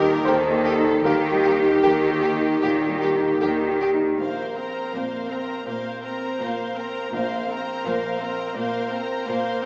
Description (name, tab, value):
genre	cinematic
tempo	76-86 BPM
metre	4/4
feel	rubato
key	unclear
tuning	A4 = 440 Hz
part	warm symphonic violin section	second line	0.0-9.6 s	G4 to Bb5	-32 LUFS	equal	none
part	warm baby grand piano	accompaniment	0.0-9.7 s	Bb1 to F5	-26 LUFS	equal	none
part	warm chamber viola section	accompaniment	0.0-9.7 s	Bb3 to C5	-29 LUFS	equal	none
part	rich studio cello section	bass	0.0-9.7 s	Bb2 to Eb3	-31 LUFS	equal	none
part	rich symphonic double bass section	bass	0.0-4.1 s	Eb2	-33 LUFS	equal	none
part	warm symphonic violin section	melody	0.3-3.9 s	G4	-30 LUFS	equal	none
room	wet recital hall reverb, RT60 1.4 s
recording	recorded in a church or concert hall, small speaker sound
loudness	-23 LUFS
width	mono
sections	0.0-4.2 A section; 4.2-9.7 B section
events	none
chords	0.0 Eb; 4.2 Bbsus2